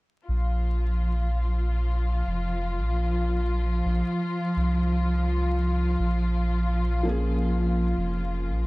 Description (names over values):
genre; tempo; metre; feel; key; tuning
trip hop; 84 BPM; 4/4; swing 55% on 16ths; Bb minor; A4 = 440 Hz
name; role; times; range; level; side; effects
muted studio string section; sustained chords; 0.3-8.7 s; F3 to F4; -28 LUFS; equal; none
soft dub sub bass; bass; 0.3-8.7 s; F1 to C2; -25 LUFS; equal; none
felt-muted upright piano; accompaniment; 7.0-8.7 s; F3 to Ab4; -29 LUFS; equal; tremolo, tape echo
room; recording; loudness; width
studio ambience; dry, gritty hardware recording, vinyl crackle; -23 LUFS; side -22 dB against mid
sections
0.3-8.7 A section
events
none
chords
0.3 Bbm7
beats
| 0.28 0.99 1.70 2.42 | 3.13 3.85 4.56 5.28 | 5.99 6.70 7.42 8.13